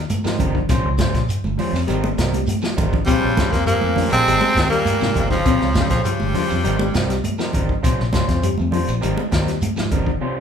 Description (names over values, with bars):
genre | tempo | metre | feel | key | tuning
afrobeat | 101 BPM | 4/4 | straight | unclear | A4 = 438 Hz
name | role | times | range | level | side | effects
fingered electric bass | bass | 0.0-10.2 s | G1 to Ab2 | -23 LUFS | equal | none
vintage drum kit | drums | 0.1-10.2 s | hi-hat, kick drum, snare drum | -23 LUFS | equal | none
congas | percussion | 0.1-10.1 s | none | -26 LUFS | right 3 dB | none
shekere | percussion | 0.1-10.1 s | none | -28 LUFS | right 1 dB | none
electric guitar through a small old amp | stabs | 0.2-10.4 s | G3 to C5 | -27 LUFS | right 2 dB | none
mellow electric guitar | arpeggios | 0.3-10.4 s | C3 to C4 | -26 LUFS | left 5 dB | none
raspy tenor saxophone | melody | 3.1-7.2 s | F3 to C4 | -20 LUFS | right 1 dB | none
clear trombone | second line | 3.1-6.6 s | Db3 to Ab3 | -29 LUFS | right 3 dB | none
raspy baritone saxophone | second line | 3.1-7.2 s | F2 to C3 | -27 LUFS | left 4 dB | none
room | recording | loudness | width
moderate large studio reverb, RT60 0.9 s | band playing live in one room | -17 LUFS | side -7 dB against mid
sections
0.0-10.4 A section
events
drum fill 2.3-3.1; break 10.2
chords
0.0 Abmaj9; 0.7 Bbm69; 1.9 Abmaj9; 3.1 Bbm69; 4.3 Abmaj9; 5.5 Bbm69; 6.6 Abmaj9; 7.8 Bbm69; 9.0 Abmaj9